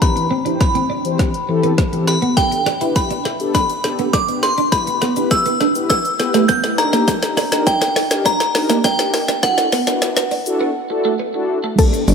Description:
dance-pop; 102 BPM; 4/4; straight; A4 = 440 Hz
glassy synth bell; melody; 0.0-11.2 s; F#5 to G6; -20 LUFS; equal; chorus, phaser, tape echo
mellow synth brass; accompaniment; 0.0-12.0 s; E3 to C5; -21 LUFS; left 2 dB; chorus, sidechain pumping
deep house drum kit; drums; 0.0-12.1 s; crash cymbal, hi-hat, kick drum, shaker, snare drum; -19 LUFS; left 1 dB
twelve-string electric guitar; riff; 0.2-12.1 s; A3 to E4; -22 LUFS; right 4 dB; analog chorus
tube shaker; percussion; 2.4-12.1 s; -37 LUFS; left 9 dB
soft round pluck; melody; 11.8-12.0 s; A4; -20 LUFS; left 2 dB; chorus
chorused synth bass; bass; 12.1 s; G1; -10 LUFS; left 1 dB; sidechain pumping
moderate concert hall reverb, RT60 2.3 s; high-pass filter; -15 LUFS; side -6 dB against mid
0.0-11.8 A section
build-up 0.0-11.8; drum fill 0.0-10.6; filter sweep 0.0-11.8
0.0 Cmaj7/E; 2.4 Gadd9; 4.7 Em; 6.8 Ebmaj7; 9.4 Dadd9
| 0.02 0.61 1.20 1.78 | 2.37 2.96 3.55 4.14 | 4.73 5.31 5.90 6.49 | 7.08 7.67 8.26 8.84 | 9.43 10.02 10.61 11.20 | 11.78

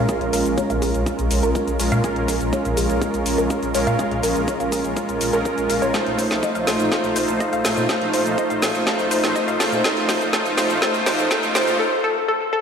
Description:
progressive house; 123 BPM; 4/4; straight; Bb minor; A4 = 440 Hz
analog pluck; arpeggios; 0.0-12.6 s; Ab4 to F5; -25 LUFS; left 1 dB; chorus, sidechain pumping, tape echo
soft supersaw; stabs; 0.0-11.8 s; Ab3 to C5; -21 LUFS; right 1 dB; sidechain pumping, low-pass filter, tape echo
dark detuned saw bass; bass; 0.0-11.8 s; Bb1 to Bb2; -28 LUFS; equal; sidechain pumping
deep house drum kit; drums; 0.1-11.8 s; hi-hat, shaker, snare drum; -24 LUFS; left 1 dB; sidechain pumping on hats, sidechain pumping on perc
electronic kick drum; drums; 0.1-11.4 s; -30 LUFS; left 1 dB; high-pass filter on kick
wet lush hall reverb, RT60 2.2 s; played on a big sound system in a bare room, large studio reverb, high-pass filter; -18 LUFS; side -7 dB against mid
0.0-12.6 A section
build-up 0.0-12.6; filter sweep on synth arpeggio sound 0.0-12.6; filter sweep on supersaw synth 0.0-12.6; filter sweep 0.0-12.6; drum fill 5.9-11.8
0.0 Bbm7; 5.9 F7/Bb
| 0.09 0.58 1.06 1.55 | 2.04 2.53 3.02 3.50 | 3.99 4.48 4.97 5.45 | 5.94 6.43 6.92 7.41 | 7.89 8.38 8.87 9.36 | 9.84 10.33 10.82 11.31 | 11.79 12.28

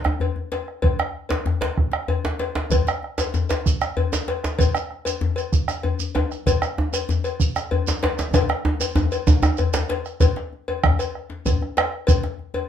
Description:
west african traditional, West African drum ensemble; 128 BPM (dotted quarters); 12/8; straight
bombo; percussion; 0.0-12.3 s; -21 LUFS; right 2 dB
djembe; percussion; 0.0-12.7 s; -25 LUFS; left 4 dB
djembe; percussion; 0.1-9.9 s; -23 LUFS; right 1 dB
cowbell; percussion; 0.2-12.7 s; -27 LUFS; left 4 dB
shekere; percussion; 2.7-12.2 s; -30 LUFS; right 6 dB
moderate studio reverb, RT60 0.6 s; minimal, uncompressed stereo recording; -20 LUFS; side -9 dB against mid
0.0-10.2 A section; 10.2-12.7 B section
drum fill 8.3-10.2
0.36 | 0.83 1.30 1.77 2.24 | 2.71 3.18 3.65 4.12 | 4.59 5.06 5.53 5.99 | 6.46 6.93 7.40 7.87 | 8.34 8.80 9.27 9.74 | 10.21 10.67 11.14 11.61 | 12.07 12.54

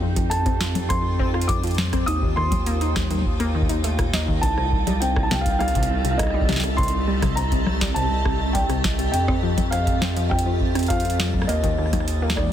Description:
IDM; 102 BPM; 4/4; straight; C dorian; A4 = 440 Hz
felt-muted upright piano; melody; 0.0-12.5 s; D5 to Eb6; -27 LUFS; equal; digital delay, shimmer reverb
granular cloud pad; sustained chords; 0.0-12.5 s; C4 to A5; -30 LUFS; right 1 dB; built-in reverb, sidechain pumping, shimmer reverb
warbly dusty pluck; arpeggios; 0.0-12.5 s; C2 to F4; -28 LUFS; left 2 dB; chorus, ping-pong delay, shimmer reverb
round analog bass; bass; 0.0-12.5 s; C2 to F2; -24 LUFS; equal
booming analog drum machine; drums; 0.2-12.5 s; congas, hi-hat, rim click, snare drum; -28 LUFS; left 1 dB
electronic kick drum; drums; 0.2-12.5 s; -26 LUFS; equal
bubbling stepped-filter texture; texture; 4.7-12.5 s; A3 to A6; -36 LUFS; equal; chorus, built-in reverb, shimmer reverb
light reverb; dense, heavily limited modern master; -19 LUFS; side -10 dB against mid
0.0-12.5 A section
0.0 Fadd9; 2.1 Ebadd9; 4.4 Cm; 9.1 Fadd9; 11.5 Ebadd9
0.31 0.90 1.49 | 2.08 2.67 3.25 3.84 | 4.43 5.02 5.61 6.19 | 6.78 7.37 7.96 8.55 | 9.13 9.72 10.31 10.90 | 11.49 12.08

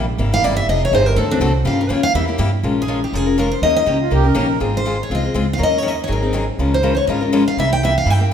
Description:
acoustic string swing (jazz manouche); 244 BPM; 4/4; swing 55% on 8ths; A4 = 440 Hz
picked steel-string acoustic guitar; accompaniment; 0.0-8.3 s; C3 to Bb4; -19 LUFS; left 4 dB
upright bass; bass; 0.0-8.3 s; F1 to G2; -20 LUFS; right 1 dB
picked steel-string acoustic guitar; melody; 0.3-8.3 s; D4 to G5; -19 LUFS; right 1 dB
accordion; second line; 4.0-4.6 s; F4 to Bb4; -24 LUFS; right 7 dB
moderate recital hall reverb, RT60 1.7 s; minimal, uncompressed stereo recording; -15 LUFS; side -8 dB against mid
0.0-2.6 A section; 2.6-8.3 B section
steel-string acoustic guitar solo 0.0-2.6
0.0 C7; 0.7 Fm9; 1.2 D7; 1.7 Gm7b5; 2.2 C7; 2.6 Bbm7; 3.6 Eb7; 4.6 Ab6; 5.6 Ebm7; 6.1 Ab7; 6.6 Db69; 7.6 C7
0.20 0.44 | 0.69 0.93 1.18 1.42 | 1.67 1.91 2.16 2.40 | 2.65 2.90 3.14 3.39 | 3.63 3.88 4.13 4.37 | 4.62 4.86 5.11 5.36 | 5.60 5.85 6.09 6.34 | 6.58 6.83 7.08 7.32 | 7.57 7.81 8.06 8.30

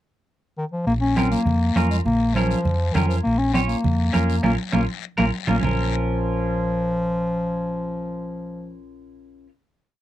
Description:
latin, cumbia; 202 BPM; 4/4; straight; Bb minor; A4 = 436 Hz
clear bass clarinet; melody; 0.6-8.8 s; Eb3 to Db4; -23 LUFS; left 2 dB
hollow-body short-scale fingered electric bass; bass; 0.9-9.5 s; Bb1 to F2; -24 LUFS; equal
guiro; percussion; 0.9-5.7 s; -36 LUFS; left 17 dB
clean electric guitar; accompaniment; 1.2-9.5 s; Db4 to Db5; -27 LUFS; right 1 dB
congas; percussion; 1.2-5.7 s; -26 LUFS; right 3 dB
little or no reverb; dry, close 1970s-style studio recording; -19 LUFS; side -14 dB against mid
0.0-0.9 pickup bar; 0.9-5.6 groove; 5.6-8.0 final chord
band accent 4.4-5.6
0.0 N.C.; 0.9 Bbm
0.28 0.58 | 0.87 1.17 1.47 1.76 | 2.06 2.36 2.65 2.95 | 3.25 3.55 3.84 4.14 | 4.44 4.74 5.04 5.33 | 5.63 5.93 6.23 6.53 | 6.83 7.12 7.42 7.72

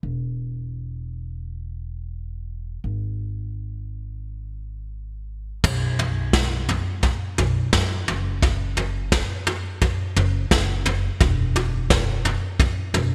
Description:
indie folk with a building arrangement; 86 BPM; 4/4; straight; A4 = 440 Hz
upright bass; bass; 0.0-13.1 s; E1 to F#2; -29 LUFS; equal
vintage brush drum kit; drums; 5.6-13.1 s; crash cymbal, kick drum, snare drum, toms; -23 LUFS; equal
light reverb; bright 1980s-style digital production; -23 LUFS; mono
0.0-5.6 A section; 5.6-13.1 B section
| 0.03 0.74 1.44 2.14 | 2.84 3.54 4.24 4.94 | 5.64 6.34 7.03 7.73 | 8.42 9.12 9.81 10.51 | 11.20 11.90 12.59

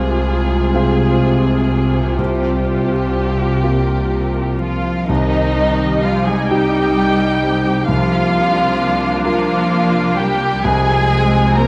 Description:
cinematic, emotional film score for orchestra; 43 BPM (dotted quarters); 6/8; uneven beats, rubato; C minor; A4 = 440 Hz
muted symphonic violin section; melody; 0.0-11.7 s; Bb4 to Bb5; -24 LUFS; equal
muted chamber violin section; second line; 0.0-11.7 s; Eb4 to Bb4; -26 LUFS; equal
muted symphonic viola section; accompaniment; 0.0-11.7 s; F3 to F4; -27 LUFS; equal
warm concert grand piano; accompaniment; 0.0-11.7 s; C2 to Bb4; -23 LUFS; equal
mellow French horn section; sustained chords; 0.0-4.7 s; G3 to F4; -26 LUFS; equal
concert harp; arpeggios; 0.0-11.7 s; C3 to Bb4; -28 LUFS; equal
muted symphonic cello section; bass; 0.0-11.7 s; C3 to Bb3; -23 LUFS; equal
muted symphonic double bass section; bass; 0.0-11.7 s; C2; -24 LUFS; equal
moderate recital hall reverb, RT60 1.4 s; vinyl crackle; -16 LUFS; mono
0.0-5.1 A section; 5.1-11.7 B section
0.0 Fm/C; 2.2 Gm7/C; 5.1 Cm; 7.9 Bb/C; 10.6 Fm/C
0.74 | 2.19 3.64 | 5.09 6.50 | 7.88 9.26 | 10.65

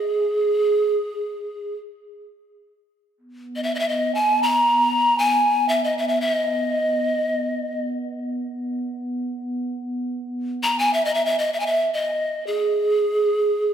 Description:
world meditative, free-time meditation music; free time; G# hirajoshi; A4 = 441 Hz
breathy polished pan flute; melody; 0.0-13.7 s; G#4 to A#5; -19 LUFS; equal; tape echo
glass harmonica; texture; 3.3-10.6 s; B3; -29 LUFS; right 1 dB; stereo widening
wet scoring stage reverb, RT60 1.6 s, studio ambience; -20 LUFS; side -9 dB against mid
0.0-2.5 A section; 2.5-13.7 A section
free time

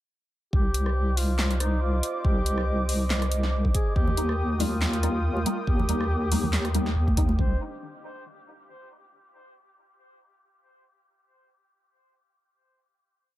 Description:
deep dubstep; 140 BPM; 4/4; swing 55% on 16ths, half-time; C minor; A4 = 439 Hz
warm duduk; melody; 0.5-7.6 s; Eb4 to C5; -34 LUFS; equal; dub echo
dark analog pad; sustained chords; 0.8-7.6 s; Bb4 to Eb6; -34 LUFS; right 1 dB; chorus
deep soft wobble bass; bass; 0.5-7.6 s; C2 to Eb2; -25 LUFS; equal; chorus, tube saturation
electronic kick drum; drums; 0.5-7.5 s; -24 LUFS; equal
deep house drum kit; drums; 0.7-7.3 s; handclaps, hi-hat, rim click, snare drum; -31 LUFS; equal
congas; percussion; 4.1-7.4 s; -34 LUFS; right 3 dB
filtered dub chord stab; stabs; 4.2-7.6 s; Eb3 to Eb4; -32 LUFS; left 2 dB; phaser, ensemble chorus, dub echo
digital ambience; -23 LUFS; side -15 dB against mid
0.5-7.4 drop; 7.4-9.1 final chord
drop 0.5-7.4
0.5 Cmadd9; 4.0 Eb; 7.4 Cmadd9
| 0.53 0.96 1.39 1.82 | 2.25 2.67 3.10 3.53 | 3.96 4.39 4.82 5.25 | 5.67 6.10 6.53 6.96 | 7.39

